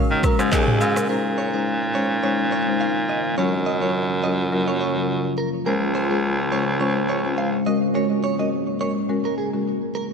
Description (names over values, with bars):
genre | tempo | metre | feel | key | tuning
afrobeats | 105 BPM | 4/4 | swing 55% on 16ths | unclear | A4 = 439 Hz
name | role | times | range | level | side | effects
buzzing marimba with medium mallets | accompaniment | 0.0-9.7 s | Gb3 to C5 | -24 LUFS | left 2 dB | none
deep dark ambient pad | sustained chords | 0.1-10.1 s | Db3 to C5 | -28 LUFS | equal | chorus, built-in reverb
direct-recorded clean electric guitar | riff | 0.0-10.1 s | Ab4 to F5 | -28 LUFS | right 5 dB | lush chorus, tape echo
raspy baritone saxophone | bass | 0.1-7.6 s | Db2 to Eb3 | -23 LUFS | equal | none
breathy flute-like synth lead | melody | 0.2-0.9 s | Ab4 to Bb4 | -28 LUFS | left 1 dB | chorus, tape echo
afro-pop drum kit | drums | 0.2-1.1 s | handclaps, kick drum, rim click, shaker, toms | -22 LUFS | equal | none
agogo bells | percussion | 0.2-1.0 s | none | -34 LUFS | left 1 dB | none
room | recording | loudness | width
wet lush hall reverb, RT60 2.5 s | dreamy mix soaked in reverb | -19 LUFS | side -5 dB against mid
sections
0.0-1.1 A section; 1.1-10.1 B section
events
none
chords
0.0 Ab9sus4; 1.1 Bbm11; 3.4 Gbmaj7; 5.7 Dbmaj7; 7.7 Ab9sus4